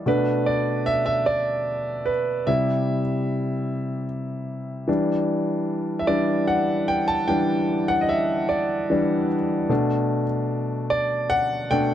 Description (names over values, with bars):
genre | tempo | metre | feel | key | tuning
pop | 50 BPM (dotted quarters) | 6/8 | straight | E minor | A4 = 440 Hz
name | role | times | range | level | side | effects
bright grand piano | solo | 0.0-11.9 s | B2 to A5 | -21 LUFS | equal | none
room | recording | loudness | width
moderate booth ambience, RT60 0.2 s | dry, close 1970s-style studio recording | -21 LUFS | side -10 dB against mid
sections
0.0-4.9 A section; 4.9-11.9 B section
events
grand piano solo 0.0-4.9, 4.9-11.9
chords
0.1 Bm7; 2.5 C; 4.9 Em7; 9.7 Bm7